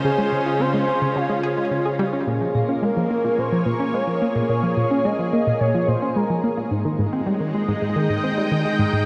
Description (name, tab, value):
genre	ambient, sequencer-driven space music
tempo	108 BPM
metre	4/4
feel	straight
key	Bb dorian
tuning	A4 = 440 Hz
part	pulse-width lead	melody	0.0-6.6 s	F4 to Eb5	-27 LUFS	equal	chorus, shimmer reverb, delay
part	lush unison pad	sustained chords	0.0-9.1 s	Db3 to G5	-26 LUFS	equal	chorus, shimmer reverb
part	tight sequenced synth	riff	0.0-9.1 s	Ab2 to Ab4	-25 LUFS	equal	chorus, delay
part	twinkling granular texture	texture	0.0-2.3 s	Eb5	-46 LUFS	equal	none
room	wet plate reverb, RT60 2.6 s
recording	dark, warm production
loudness	-21 LUFS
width	mono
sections	0.0-2.3 A section; 2.3-9.1 B section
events	none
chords	0.0 Dbmaj7; 2.3 Bbm7; 6.7 Abmaj7(no3)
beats	| 0.05 0.60 1.16 1.72 | 2.27 2.83 3.38 3.94 | 4.49 5.05 5.60 6.16 | 6.71 7.27 7.83 8.38 | 8.94